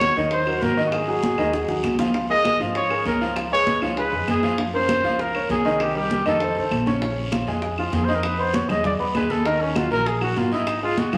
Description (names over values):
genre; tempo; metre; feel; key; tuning
Afro-Cuban jazz; 197 BPM; 4/4; straight; Bb minor; A4 = 440 Hz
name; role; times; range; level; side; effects
breathy trumpet; melody; 0.0-11.2 s; Db4 to Eb5; -26 LUFS; equal; none
warm grand piano; accompaniment; 0.0-11.2 s; Db3 to Eb6; -27 LUFS; equal; none
upright bass; bass; 0.0-11.2 s; Ab1 to Gb2; -34 LUFS; equal; none
bongos; percussion; 0.0-11.2 s; none; -37 LUFS; equal; none
claves; percussion; 0.0-11.2 s; none; -39 LUFS; equal; none
congas; percussion; 0.0-11.2 s; none; -29 LUFS; equal; none
guiro; percussion; 0.0-11.2 s; none; -40 LUFS; equal; none
room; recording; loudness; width
wet large studio reverb, RT60 1.4 s; none; -22 LUFS; mono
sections
0.0-7.0 A section; 7.0-11.2 B section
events
drum fill 1.5-2.1; trumpet solo 7.0-11.2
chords
0.0 Ebm; 0.9 Ab5; 2.1 Db6; 3.4 Db7; 4.6 Gbmaj9; 5.8 Cm7; 6.4 F; 7.0 Bbm7; 8.2 Fm7b5; 8.8 E; 9.5 Ebm; 10.7 Ab5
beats
0.01 0.32 0.62 | 0.93 1.23 1.54 1.84 | 2.15 2.45 2.76 3.06 | 3.37 3.67 3.98 4.28 | 4.58 4.89 5.19 5.50 | 5.80 6.11 6.41 6.72 | 7.02 7.32 7.63 7.93 | 8.24 8.54 8.85 9.15 | 9.46 9.76 10.06 10.37 | 10.67 10.98